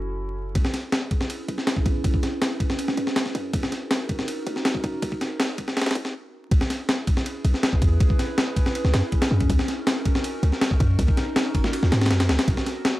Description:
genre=drum and bass, jungle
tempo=161 BPM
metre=4/4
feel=straight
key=unclear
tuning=A4 = 441 Hz
part: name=warbly tape-like pad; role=sustained chords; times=0.0-13.0 s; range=C#4 to B4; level=-31 LUFS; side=right 2 dB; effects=chorus, built-in reverb, vintage 12-bit sampler grit
part: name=warm 808-style bass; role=bass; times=0.0-12.6 s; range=F#1 to G#2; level=-22 LUFS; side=equal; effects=high-pass filter
part: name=breakbeat sampler-style drum kit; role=drums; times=0.6-12.9 s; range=kick drum, ride cymbal, snare drum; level=-22 LUFS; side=equal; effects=small room ambience
room=little or no reverb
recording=dry, gritty hardware recording, vinyl crackle, high-pass filter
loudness=-21 LUFS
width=side -17 dB against mid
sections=0.6-6.5 A section; 6.5-13.0 B section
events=build-up 0.6-6.5; filter sweep on ambient pad 0.6-6.5; filter sweep 0.6-6.5; stop 6.1-6.5; drop 6.5-13.0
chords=0.0 F#m7; 0.6 C#m7; 3.5 D#m7; 6.5 C#m7; 9.5 D#m7; 12.5 Bm7

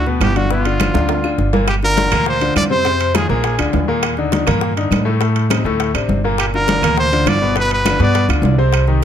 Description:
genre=latin, salsa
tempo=204 BPM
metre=4/4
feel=straight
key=unclear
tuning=A4 = 440 Hz
part: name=bright trumpet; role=melody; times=0.0-3.7, 6.4-8.3 s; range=F4 to D5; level=-19 LUFS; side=right 1 dB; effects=tape echo
part: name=upright bass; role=bass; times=0.0-9.0 s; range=G1 to A2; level=-18 LUFS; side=right 1 dB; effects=none
part: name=bright grand piano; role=accompaniment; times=0.1-9.0 s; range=A2 to C5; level=-19 LUFS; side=left 3 dB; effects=none
part: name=bongos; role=percussion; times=0.1-9.0 s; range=none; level=-26 LUFS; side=left 11 dB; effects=none
part: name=congas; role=percussion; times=0.1-9.0 s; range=none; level=-23 LUFS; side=left 1 dB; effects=none
part: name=claves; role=percussion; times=0.2-8.9 s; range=none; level=-29 LUFS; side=right 6 dB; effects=none
part: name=timbales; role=percussion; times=0.2-8.9 s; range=none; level=-25 LUFS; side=right 10 dB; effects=none
room=light reverb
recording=close, detailed microphones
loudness=-13 LUFS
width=side -9 dB against mid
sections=0.0-1.7 A section; 1.7-9.0 B section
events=drum fill 0.9-1.7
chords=0.0 G; 0.5 G7; 1.7 Gm7; 2.9 F5; 3.4 Bb7; 4.0 Ebmaj7; 5.2 Adim; 5.8 D5; 6.4 Gm7; 7.6 G7

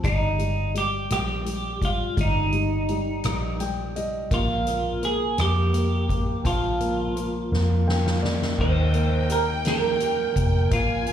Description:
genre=six-eight pop ballad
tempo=56 BPM (dotted quarters)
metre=6/8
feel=straight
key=Eb major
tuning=A4 = 441 Hz
part: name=twelve-string electric guitar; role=melody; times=0.0-11.1 s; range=Eb4 to C5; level=-26 LUFS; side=right 3 dB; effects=lush chorus, slapback echo
part: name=warm grand piano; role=accompaniment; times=0.0-11.1 s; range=Eb3 to G5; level=-29 LUFS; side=left 2 dB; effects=none
part: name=vintage muted fingered electric bass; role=bass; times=0.0-11.1 s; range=F1 to F2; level=-25 LUFS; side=equal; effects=none
part: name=soft-mallet drum kit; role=drums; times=0.0-11.1 s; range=crash cymbal, hi-hat, kick drum, rim click, snare drum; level=-29 LUFS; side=equal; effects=none
part: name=dark studio violin section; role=second line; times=8.6-11.1 s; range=G5 to Ab5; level=-31 LUFS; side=left 2 dB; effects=slapback echo
room=light reverb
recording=live gig heard through the venue's PA, club reverb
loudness=-21 LUFS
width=side -9 dB against mid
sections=0.0-8.6 A section; 8.6-11.1 B section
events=grand piano fill 3.2-4.3, 7.5-8.6; drum fill 7.5-8.6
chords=0.0 Eb/G; 4.3 Bb5; 8.6 Eb

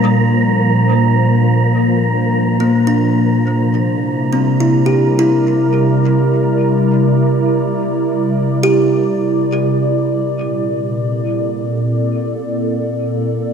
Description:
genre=ambient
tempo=free time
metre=none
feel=none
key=Bb lydian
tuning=A4 = 442 Hz
part: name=evolving wavetable pad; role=sustained chords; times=0.0-13.5 s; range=Bb2 to D5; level=-14 LUFS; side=equal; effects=ensemble chorus, built-in reverb
part: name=kalimba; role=arpeggios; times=0.0-10.1 s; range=G3 to G4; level=-19 LUFS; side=equal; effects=dub echo
part: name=wind-like tuned noise texture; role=texture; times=0.0-10.4 s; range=Bb3 to Bb5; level=-22 LUFS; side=equal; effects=built-in reverb
room=moderate plate reverb, RT60 2.6 s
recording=echo-heavy mix, cassette tape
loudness=-13 LUFS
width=side -7 dB against mid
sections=0.0-10.4 A section; 10.4-13.5 B section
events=fade-out on synth texture 0.0-10.4; filter sweep on ambient pad 0.0-10.4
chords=0.0 Bbadd9; 3.4 C9; 10.4 Bbmaj7

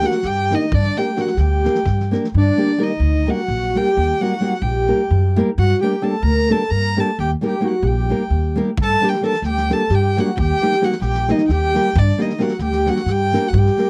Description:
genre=balkan folk, Balkan wedding band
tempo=262 BPM (eighths)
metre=7/8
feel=straight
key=G harmonic minor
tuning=A4 = 440 Hz
part: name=dark violin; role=melody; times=0.0-13.9 s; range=D5 to Bb5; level=-26 LUFS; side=equal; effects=none
part: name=warm velvety synth lead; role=second line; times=0.0-13.9 s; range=D4 to Bb4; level=-24 LUFS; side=equal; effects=chorus
part: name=nylon-string guitar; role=accompaniment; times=0.0-13.9 s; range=G3 to Bb4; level=-23 LUFS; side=equal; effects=none
part: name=upright bass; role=bass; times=0.0-13.7 s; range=Bb1 to G2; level=-20 LUFS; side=equal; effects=none
part: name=loose indie drum kit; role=percussion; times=0.0-2.3, 8.8-13.8 s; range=kick drum, snare drum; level=-29 LUFS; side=equal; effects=none
room=little or no reverb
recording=dry, close 1970s-style studio recording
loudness=-18 LUFS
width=mono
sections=0.0-2.3 A section; 2.3-13.9 A section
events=none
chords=0.0 Gm; 4.0 Eb; 5.6 Gm; 7.2 Eb; 8.8 Gm; 10.4 Eb; 12.0 Gm

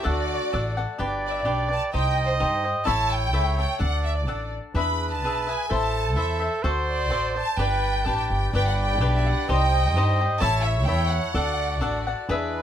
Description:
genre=mexican folk, mariachi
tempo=128 BPM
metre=2/4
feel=straight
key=G major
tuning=A4 = 440 Hz
part: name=warm studio violin section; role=melody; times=0.0-12.1 s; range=C5 to B5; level=-28 LUFS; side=equal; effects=none
part: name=clear trumpet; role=second line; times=0.0-12.6 s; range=F#4 to Eb5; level=-30 LUFS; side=right 4 dB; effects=none
part: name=cavaquinho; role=accompaniment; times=0.0-12.6 s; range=D4 to F#5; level=-28 LUFS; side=left 2 dB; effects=none
part: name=warm symphonic violin section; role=sustained chords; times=0.0-1.0, 8.5-12.6 s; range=G3 to D5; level=-35 LUFS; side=equal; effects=none
part: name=upright bass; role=bass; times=0.1-12.6 s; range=G1 to G2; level=-25 LUFS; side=equal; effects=none
room=light reverb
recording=none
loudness=-21 LUFS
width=side -10 dB against mid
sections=1.0-8.5 A section; 8.5-12.6 A section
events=none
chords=0.1 D; 1.0 G; 1.9 Cm; 2.9 A; 3.8 D; 4.7 E7; 5.7 Am; 6.6 D7; 7.6 G; 9.5 Cm; 10.4 A; 11.3 D

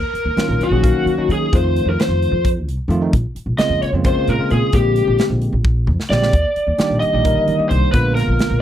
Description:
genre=electric jazz fusion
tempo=262 BPM (eighths)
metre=7/8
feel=straight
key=unclear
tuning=A4 = 439 Hz
part: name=lead guitar through a small cranked amp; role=melody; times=0.0-8.6 s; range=Gb4 to Eb5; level=-19 LUFS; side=left 2 dB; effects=overdrive
part: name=upright bass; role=bass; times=0.1-8.6 s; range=Bb1 to Eb3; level=-19 LUFS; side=equal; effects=none
part: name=modern studio drum kit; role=drums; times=0.1-8.5 s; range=hi-hat, kick drum, snare drum, toms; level=-20 LUFS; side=equal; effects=none
part: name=bell-like tine electric piano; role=accompaniment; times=0.4-8.6 s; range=Db3 to F5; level=-21 LUFS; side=right 2 dB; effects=medium stereo tremolo
room=little or no reverb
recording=dry, close 1970s-style studio recording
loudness=-14 LUFS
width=side -11 dB against mid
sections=0.0-8.6 A section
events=drum fill 5.6-6.3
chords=0.0 Ebm9; 1.5 F7; 3.1 Bbm9; 4.7 Bb13; 6.3 Ebmaj7; 7.9 Bb7b9

